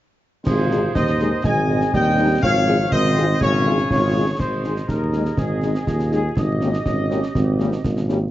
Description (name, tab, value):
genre	military-style march for wind band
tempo	122 BPM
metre	2/4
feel	straight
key	Ab major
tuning	A4 = 437 Hz
part	dark trumpet section	melody	0.5-7.8 s	Ab4 to Ab5	-23 LUFS	left 2 dB	analog delay
part	dark euphonium	second line	0.5-8.3 s	C3 to F4	-27 LUFS	right 4 dB	none
part	warm woodwind section	second line	0.5-8.2 s	G4 to Eb5	-29 LUFS	right 4 dB	analog delay
part	warm trombone section	sustained chords	0.5-8.2 s	Eb3 to F4	-30 LUFS	equal	none
part	warm tuba	bass	0.5-8.3 s	Ab1 to Eb2	-21 LUFS	equal	none
part	concert snare drum, clash cymbals and concert bass drum	drums	0.5-8.2 s	none	-25 LUFS	equal	none
part	dark French horn section	accompaniment	0.7-8.2 s	Ab3 to Ab4	-25 LUFS	left 4 dB	none
room	light reverb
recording	vinyl crackle, nothing above 7.7 kHz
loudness	-17 LUFS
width	side -14 dB against mid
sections	0.5-4.4 A section; 4.4-8.3 B section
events	none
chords	0.5 Ab; 2.4 Db/Ab; 4.4 Ab; 6.4 Eb7/Ab